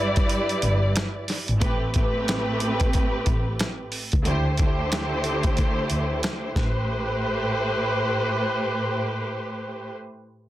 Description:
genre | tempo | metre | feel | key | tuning
hip hop, boom-bap hip-hop | 91 BPM | 4/4 | swing 61% on 16ths | A minor | A4 = 440 Hz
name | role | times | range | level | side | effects
warm studio string section | accompaniment | 0.0-9.9 s | G2 to D5 | -25 LUFS | equal | cassette tape, high-pass filter, low-pass filter
warm double bass | bass | 0.0-9.9 s | G1 to D2 | -28 LUFS | equal | none
dusty soul sampler-style drum kit | drums | 0.2-6.8 s | hi-hat, kick drum, snare drum | -24 LUFS | equal | none
room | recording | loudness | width
light reverb | dense, heavily limited modern master | -22 LUFS | side -14 dB against mid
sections
0.0-1.6 A section; 1.6-6.9 B section; 6.9-9.5 C section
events
break 0.3-1.6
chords
0.0 Em7/G; 1.6 Am7; 4.3 D7sus4; 6.6 Am7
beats
0.30 0.96 | 1.62 2.28 2.94 3.60 | 4.25 4.91 5.57 6.23 | 6.89 7.55 8.21 8.87

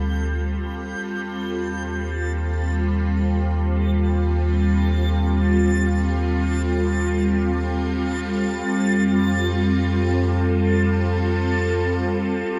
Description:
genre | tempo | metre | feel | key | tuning
ambient | free time | none | none | Eb lydian | A4 = 445 Hz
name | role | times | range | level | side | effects
evolving wavetable pad | sustained chords | 0.0-12.6 s | G3 to A4 | -24 LUFS | equal | ensemble chorus, built-in reverb, phaser
warm sub bass | bass | 0.0-12.6 s | D2 to F2 | -25 LUFS | equal | none
backwards swelling texture | texture | 0.0-12.6 s | G6 to A6 | -34 LUFS | equal | built-in reverb
room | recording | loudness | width
wet lush hall reverb, RT60 2.8 s | dark, warm production | -22 LUFS | mono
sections
0.0-12.6 A section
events
fade-in on synth texture 0.0-12.6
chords
0.0 Dm7; 1.0 Ebadd9; 8.7 Fadd9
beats
free time

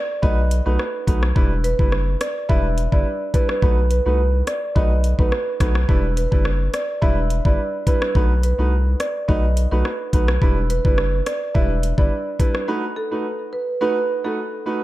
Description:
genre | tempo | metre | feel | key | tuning
dancehall | 106 BPM | 4/4 | straight | E minor | A4 = 440 Hz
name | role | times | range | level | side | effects
marimba with medium mallets | melody | 0.0-14.4 s | A4 to E5 | -25 LUFS | right 2 dB | analog delay
clear baby grand piano | accompaniment | 0.2-14.8 s | G3 to B4 | -26 LUFS | right 2 dB | sidechain pumping
saturated sub bass | bass | 0.2-12.1 s | E1 to C2 | -20 LUFS | equal | none
afro-pop drum kit | drums | 0.2-12.7 s | hi-hat, kick drum, rim click | -20 LUFS | equal | none
room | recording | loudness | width
moderate plate reverb, RT60 1.4 s | dreamy mix soaked in reverb | -17 LUFS | side -16 dB against mid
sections
0.0-14.8 A section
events
break 12.7-14.8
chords
0.0 B7; 1.4 Em7; 3.6 B7; 5.9 Em7; 8.2 B7; 10.4 Em7; 12.7 B7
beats
0.23 0.79 | 1.36 1.93 2.49 3.06 | 3.62 4.19 4.75 5.32 | 5.89 6.45 7.02 7.59 | 8.15 8.72 9.28 9.85 | 10.42 10.98 11.55 12.11 | 12.68 13.25 13.81 14.38

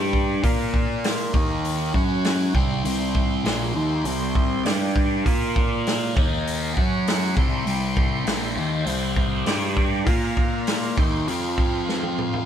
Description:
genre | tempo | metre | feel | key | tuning
psychedelic rock | 100 BPM | 4/4 | straight | unclear | A4 = 440 Hz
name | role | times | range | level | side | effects
overdriven tonewheel organ | sustained chords | 0.0-12.5 s | Bb3 to C6 | -32 LUFS | right 2 dB | slow rotary speaker
thick fuzz guitar | riff | 0.0-12.5 s | Bb2 to Bb4 | -25 LUFS | equal | distortion, phaser
fuzz picked electric bass | bass | 0.0-12.4 s | Bb1 to Bb2 | -28 LUFS | equal | overdrive
vintage drum kit | drums | 0.1-12.5 s | hi-hat, kick drum, snare drum, toms | -24 LUFS | equal | none
room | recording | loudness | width
light reverb | band playing live in one room | -20 LUFS | side -9 dB against mid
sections
0.0-12.5 A section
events
drum fill 11.9-12.5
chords
0.4 Bb5; 1.3 Eb5; 1.9 F#5; 2.5 C; 4.7 G5; 5.3 Bb5; 6.2 Eb5; 6.8 F#5; 7.4 C; 9.5 G5; 10.1 Bb5; 11.0 C; 11.3 F5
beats
| 0.43 1.03 1.64 2.24 | 2.84 3.45 4.05 4.65 | 5.25 5.86 6.46 7.06 | 7.66 8.27 8.87 9.47 | 10.07 10.67 11.28 11.88

